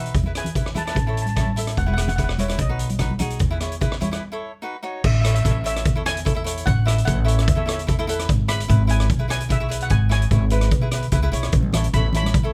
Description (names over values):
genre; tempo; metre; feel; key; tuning
calypso; 148 BPM; 4/4; straight; unclear; A4 = 440 Hz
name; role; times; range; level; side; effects
steel pan; melody; 0.0-12.5 s; B4 to B5; -31 LUFS; equal; none
cavaquinho; accompaniment; 0.0-12.5 s; D#4 to E5; -32 LUFS; equal; none
upright bass; bass; 0.0-12.5 s; E1 to E2; -24 LUFS; equal; none
street-band drum kit; drums; 0.1-12.4 s; crash cymbal, hi-hat, kick drum, rim click; -25 LUFS; equal; none
congas; percussion; 0.2-4.1, 11.6-12.3 s; none; -30 LUFS; equal; none
room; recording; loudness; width
little or no reverb; none; -21 LUFS; mono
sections
0.0-5.0 A section; 5.0-12.5 B section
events
break 4.2-5.0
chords
0.1 E; 1.0 A; 1.8 E; 2.6 B; 3.4 E; 4.2 A; 4.6 B; 5.0 A; 8.3 E/G#; 11.5 Aadd9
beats
| 0.14 0.54 0.95 1.36 | 1.77 2.18 2.59 3.00 | 3.40 3.81 4.22 4.63 | 5.04 5.44 5.85 6.26 | 6.66 7.07 7.47 7.88 | 8.29 8.69 9.10 9.50 | 9.91 10.31 10.71 11.12 | 11.52 11.93 12.33